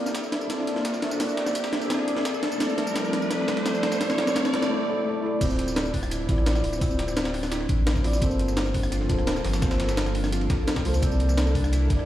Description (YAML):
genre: liquid drum and bass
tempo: 171 BPM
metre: 4/4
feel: straight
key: D minor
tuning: A4 = 440 Hz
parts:
  - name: felt-muted upright piano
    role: accompaniment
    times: 0.0-12.1 s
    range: A3 to D5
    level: -29 LUFS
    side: equal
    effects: low-pass filter, digital delay
  - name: airy breathy pad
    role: sustained chords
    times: 0.0-12.1 s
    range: F3 to E5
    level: -34 LUFS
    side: left 1 dB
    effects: chorus, sidechain pumping
  - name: riser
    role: sound effects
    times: 0.0-4.7 s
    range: none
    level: -34 LUFS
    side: equal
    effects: none
  - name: breakbeat sampler-style drum kit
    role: drums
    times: 0.1-12.1 s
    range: crash cymbal, hi-hat, rim click, snare drum, tambourine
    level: -30 LUFS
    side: equal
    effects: none
  - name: breakbeat sampler-style drum kit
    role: drums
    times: 0.1-12.0 s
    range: hi-hat, ride cymbal, snare drum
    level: -36 LUFS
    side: equal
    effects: high-pass filter on cymbals, high-pass filter on snare, high-pass filter on hats
  - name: electronic kick drum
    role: drums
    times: 0.1-12.0 s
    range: none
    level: -26 LUFS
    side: equal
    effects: high-pass filter on kick, high-pass filter on room
  - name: harp-like synth pluck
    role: arpeggios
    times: 0.3-11.9 s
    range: C4 to F4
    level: -32 LUFS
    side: right 1 dB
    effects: chorus, digital delay
  - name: saturated sub bass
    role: bass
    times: 5.4-12.1 s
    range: D1 to D2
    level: -26 LUFS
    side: equal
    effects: none
room: moderate lush hall reverb, RT60 2.2 s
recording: played on a big sound system in a bare room, stone room reverb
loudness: -22 LUFS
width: side -12 dB against mid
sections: 0.0-5.4 A section; 5.4-12.1 B section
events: build-up 0.0-5.4; drum fill 0.0-4.7; riser 0.0-4.7; filter sweep on felt piano 0.0-5.4; filter sweep on synth pluck 0.0-5.4; break 4.7-5.4; drop 5.4-12.1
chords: 0.0 C13; 2.6 Fmaj9; 5.4 Dm9; 8.2 Gm11; 11.0 C13